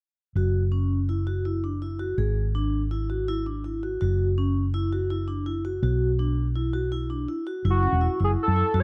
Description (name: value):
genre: progressive instrumental, progressive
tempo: 165 BPM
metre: 5/4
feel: straight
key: F# minor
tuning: A4 = 440 Hz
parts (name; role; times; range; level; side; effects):
- vibraphone with medium mallets; arpeggios; 0.4-8.8 s; C#4 to G#4; -32 LUFS; equal; none
- hollow-body short-scale fingered electric bass; bass; 0.4-8.8 s; E1 to F#2; -27 LUFS; equal; none
- lead with added fifth; melody; 7.7-8.8 s; F#4 to C#5; -27 LUFS; equal; chorus
room: little or no reverb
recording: dry, close 1970s-style studio recording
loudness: -26 LUFS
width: mono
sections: 0.4-7.6 A section; 7.6-8.8 B section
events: none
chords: 0.4 F#5; 2.2 E9/G#; 4.0 F#5; 5.8 Bm; 7.6 F#m7